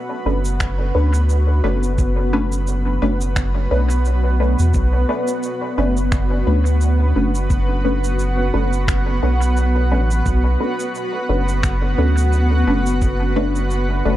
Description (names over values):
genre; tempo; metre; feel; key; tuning
ambient dub; 87 BPM; 4/4; swing 56% on 16ths; B minor; A4 = 441 Hz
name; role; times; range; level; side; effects
granular cloud pad; sustained chords; 0.0-14.2 s; B3 to F#5; -23 LUFS; right 1 dB; built-in reverb
filtered dub chord stab; stabs; 0.3-14.2 s; A3 to B4; -24 LUFS; left 1 dB; phaser, lush chorus, dub echo
soft dub sub bass; bass; 0.3-14.2 s; F#1 to E2; -18 LUFS; equal; none
electronic shaker and finger snaps; drums; 0.4-13.9 s; none; -30 LUFS; right 1 dB; studio ambience, dub echo
electronic kick drum; drums; 0.6-13.2 s; none; -21 LUFS; equal; studio ambience
room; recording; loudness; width
light reverb, digital ambience; none; -16 LUFS; side -14 dB against mid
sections
0.0-14.2 A section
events
none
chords
0.0 Bm9